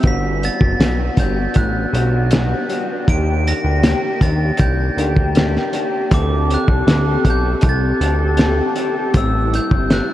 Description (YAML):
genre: indie pop, bedroom pop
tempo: 79 BPM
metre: 4/4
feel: straight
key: unclear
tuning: A4 = 436 Hz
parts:
  - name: electric guitar through a small old amp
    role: accompaniment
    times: 0.0-10.1 s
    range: A2 to A4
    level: -21 LUFS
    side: left 1 dB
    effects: ensemble chorus, warbly pitch drift
  - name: fat analog bass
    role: bass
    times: 0.0-10.0 s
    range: F#1 to Eb2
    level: -18 LUFS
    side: equal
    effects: none
  - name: cloth-damped thuddy drum kit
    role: drums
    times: 0.0-10.1 s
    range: hi-hat, kick drum, snare drum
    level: -18 LUFS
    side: equal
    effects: none
  - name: glockenspiel with hard plastic mallets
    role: melody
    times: 0.1-10.1 s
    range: D6 to D7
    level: -25 LUFS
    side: right 2 dB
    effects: wide subtle chorus, tape echo
room: moderate huge ambient reverb, RT60 7.3 s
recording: dreamy mix soaked in reverb, cassette tape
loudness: -14 LUFS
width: side -13 dB against mid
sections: 0.0-10.1 A section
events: none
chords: 0.0 Gmaj7; 3.1 Ebmaj7; 6.1 D7sus4; 9.1 Am7